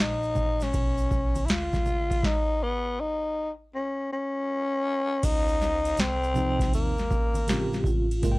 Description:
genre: hip hop, jazz-hop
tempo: 80 BPM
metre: 4/4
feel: swing 66% on 16ths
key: Db mixolydian, Db lydian from 5.2 s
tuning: A4 = 436 Hz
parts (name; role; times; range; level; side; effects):
- growling tenor saxophone; melody; 0.0-7.8 s; Bb3 to F4; -27 LUFS; left 1 dB; none
- upright bass; bass; 0.0-8.4 s; Ab1 to Eb2; -33 LUFS; equal; transformer saturation
- booming analog drum machine; drums; 0.0-8.4 s; crash cymbal, hi-hat, kick drum, ride cymbal, snare drum; -27 LUFS; equal; overdrive, vintage 12-bit sampler grit
- tube shaker and congas; percussion; 0.2-8.4 s; none; -39 LUFS; right 2 dB; none
- tine electric piano; accompaniment; 6.3-8.4 s; C3 to G5; -30 LUFS; right 1 dB; fast stereo tremolo
- vibraphone with soft mallets; second line; 7.5-8.4 s; F4 to Bb4; -31 LUFS; right 1 dB; none
room: little or no reverb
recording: dry, gritty hardware recording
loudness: -24 LUFS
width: side -21 dB against mid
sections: 0.0-5.2 A section; 5.2-8.4 B section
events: stop 2.2-5.2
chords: 0.0 Db7sus2; 5.2 Dbmaj9

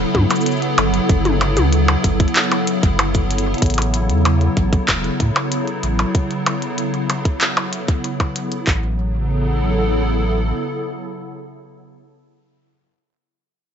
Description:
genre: IDM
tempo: 95 BPM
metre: 4/4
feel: straight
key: A mixolydian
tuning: A4 = 440 Hz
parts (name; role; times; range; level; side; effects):
- hollow soft pad; sustained chords; 0.0-12.0 s; C#3 to A4; -20 LUFS; equal; ensemble chorus, vintage 12-bit sampler grit
- warm sub bass; bass; 0.0-10.5 s; E1 to A2; -19 LUFS; equal; tube saturation
- glitchy drum kit; drums; 0.1-8.8 s; handclaps, kick drum; -18 LUFS; equal; none
- glitchy drum kit; drums; 0.1-8.6 s; cabasa, handclaps, hi-hat, percussion blips, toms; -21 LUFS; equal; tape echo
room: light reverb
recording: nothing above 7.8 kHz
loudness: -16 LUFS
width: side -8 dB against mid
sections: 0.0-3.6 A section; 3.6-8.7 B section; 8.7-11.2 C section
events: drum fill 3.3-3.6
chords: 0.0 Gmaj7; 3.6 A6

